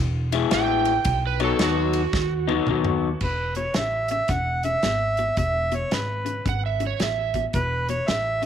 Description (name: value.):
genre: electric blues shuffle.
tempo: 111 BPM.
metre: 4/4.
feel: swing 64% on 8ths.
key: E major.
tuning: A4 = 439 Hz.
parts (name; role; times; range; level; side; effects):
upright bass; bass; 0.0-8.5 s; E1 to D#2; -27 LUFS; right 1 dB; none.
electric guitar through a small old amp; riff; 0.3-8.5 s; E2 to E4; -27 LUFS; left 11 dB; none.
natural country drum kit; drums; 0.3-8.5 s; crash cymbal, hi-hat, kick drum, ride cymbal, snare drum, toms; -28 LUFS; right 1 dB; none.
overdriven slide guitar; second line; 0.5-3.2, 6.5-7.4 s; F#4 to G5; -26 LUFS; right 10 dB; none.
warm harmonica; melody; 3.2-8.5 s; B4 to F#5; -24 LUFS; right 1 dB; overdrive.
room: moderate spring reverb, RT60 1.5 s, small room ambience.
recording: 1960s-style stereo with parts hard left and right.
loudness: -21 LUFS.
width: side -9 dB against mid.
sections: 0.0-3.2 A section; 3.2-8.5 B section.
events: electric slide guitar solo 0.0-3.2; drum fill 2.1-3.2.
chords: 0.0 E; 1.1 B; 3.2 E.